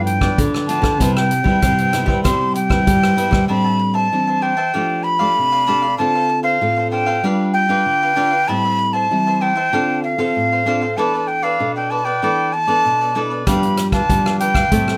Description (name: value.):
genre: samba and choro.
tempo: 96 BPM.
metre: 4/4.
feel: straight.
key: C major, A minor from 3.5 s.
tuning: A4 = 435 Hz.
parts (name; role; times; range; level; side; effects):
breathy silver concert flute; melody; 0.0-15.0 s; F5 to C6; -20 LUFS; equal; none.
cavaquinho; accompaniment; 0.0-15.0 s; D4 to A5; -27 LUFS; equal; none.
nylon-string guitar; accompaniment; 0.0-15.0 s; G2 to B4; -24 LUFS; equal; none.
nylon-string guitar; bass; 0.0-3.5, 13.5-15.0 s; G2 to A3; -22 LUFS; equal; none.
swinging big-band drum kit; drums; 0.1-3.5, 13.5-15.0 s; hi-hat, kick drum, rim click; -22 LUFS; equal; none.
room: moderate studio ambience, RT60 0.5 s.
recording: none.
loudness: -17 LUFS.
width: mono.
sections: 0.0-3.5 A section; 3.5-15.0 B section.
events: none.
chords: 0.0 G7; 1.0 Cmaj7; 3.5 Am7; 4.7 F69; 6.0 Dm7; 7.2 G7; 8.5 Am7; 9.7 Dm7; 11.0 E7sus4; 13.5 G7.